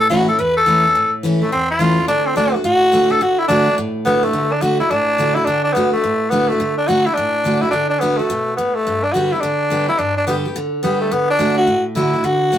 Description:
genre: rock.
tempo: 213 BPM.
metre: 4/4.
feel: swing 64% on 8ths.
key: D major.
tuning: A4 = 440 Hz.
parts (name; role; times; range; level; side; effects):
growling tenor saxophone; melody; 0.0-12.6 s; A3 to B4; -16 LUFS; left 1 dB; none.
picked steel-string acoustic guitar; accompaniment; 0.0-12.6 s; E2 to G4; -19 LUFS; right 1 dB; none.
room: moderate studio reverb, RT60 0.5 s.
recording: rough rehearsal-room recording.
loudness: -14 LUFS.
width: side -10 dB against mid.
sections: 0.0-4.3 A section; 4.3-12.6 B section.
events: tenor saxophone solo 0.0-4.3.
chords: 0.0 A; 2.1 D; 8.9 G; 11.1 D.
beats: 0.11 0.39 0.67 | 0.95 1.23 1.52 1.80 | 2.08 2.36 2.64 2.93 | 3.21 3.49 3.77 4.05 | 4.34 4.62 4.90 5.18 | 5.47 5.75 6.03 6.32 | 6.60 6.88 7.17 7.45 | 7.73 8.01 8.29 8.58 | 8.86 9.14 9.43 9.71 | 9.99 10.27 10.55 10.84 | 11.12 11.40 11.68 11.96 | 12.25 12.53.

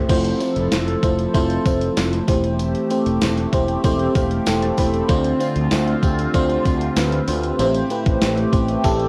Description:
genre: 1980s-style pop.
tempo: 96 BPM.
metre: 4/4.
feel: straight.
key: unclear.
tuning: A4 = 442 Hz.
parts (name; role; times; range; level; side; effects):
FM electric piano with soft pad layer; accompaniment; 0.0-9.1 s; A2 to B5; -23 LUFS; equal; chorus, cassette tape.
phased analog pad; sustained chords; 0.0-9.1 s; D3 to A4; -27 LUFS; equal; phaser, chorus, cassette tape.
fretless electric bass; bass; 0.1-9.1 s; E1 to D2; -26 LUFS; equal; none.
clean 12-bit digital drum machine; drums; 0.1-9.1 s; crash cymbal, hi-hat, kick drum, snare drum, tambourine; -24 LUFS; equal; overdrive.
tambourine; percussion; 0.1-9.0 s; none; -42 LUFS; equal; none.
room: moderate studio reverb, RT60 0.6 s.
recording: home recording on cassette.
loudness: -19 LUFS.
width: mono.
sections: 0.1-9.1 A section.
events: FM electric piano fill 3.8-5.1, 8.8.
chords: 0.1 Fmaj7; 2.3 Am7/E; 5.1 Dm7; 7.6 Am7.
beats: | 0.09 0.72 1.34 1.97 | 2.59 3.22 3.84 4.47 | 5.09 5.72 6.34 6.97 | 7.59 8.22 8.84.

